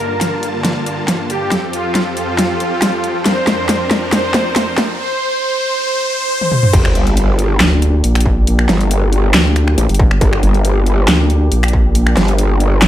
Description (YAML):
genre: heavy wobble dubstep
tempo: 138 BPM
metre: 4/4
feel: half-time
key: G minor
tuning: A4 = 441 Hz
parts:
  - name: soft supersaw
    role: melody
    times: 0.0-6.7 s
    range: F4 to C5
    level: -19 LUFS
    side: right 1 dB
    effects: digital delay
  - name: supersaw chords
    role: sustained chords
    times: 0.0-12.9 s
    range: F2 to A5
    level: -22 LUFS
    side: equal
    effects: sidechain pumping, low-pass filter
  - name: riser and sub drop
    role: sound effects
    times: 3.0-8.5 s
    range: none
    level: -25 LUFS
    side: equal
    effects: none
  - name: dubstep drum kit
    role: drums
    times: 0.2-12.9 s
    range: crash cymbal, finger snaps, handclaps, hi-hat, snare drum, toms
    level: -16 LUFS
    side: equal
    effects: studio reverb
  - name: growl bass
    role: bass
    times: 6.7-12.8 s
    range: G1 to A1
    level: -13 LUFS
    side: equal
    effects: chorus, overdrive
  - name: electronic kick drum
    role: drums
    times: 6.7-11.8 s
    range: none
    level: -14 LUFS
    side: equal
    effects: distortion, studio reverb
  - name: vowel-sweep wobble bass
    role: bass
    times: 7.6-12.9 s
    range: G1 to D2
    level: -13 LUFS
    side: equal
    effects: chorus, overdrive
room: light reverb, digital ambience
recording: none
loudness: -12 LUFS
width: side -12 dB against mid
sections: 0.0-6.7 A section; 6.7-12.9 B section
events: build-up 0.0-6.7; drum fill 0.0-5.0, 6.4-6.7; riser 3.0-6.7; drop 6.7-12.9; impact 6.7-8.5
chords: 0.0 Gm7; 1.5 Fadd9; 3.3 Bbadd9/F; 5.0 N.C.; 6.7 Gm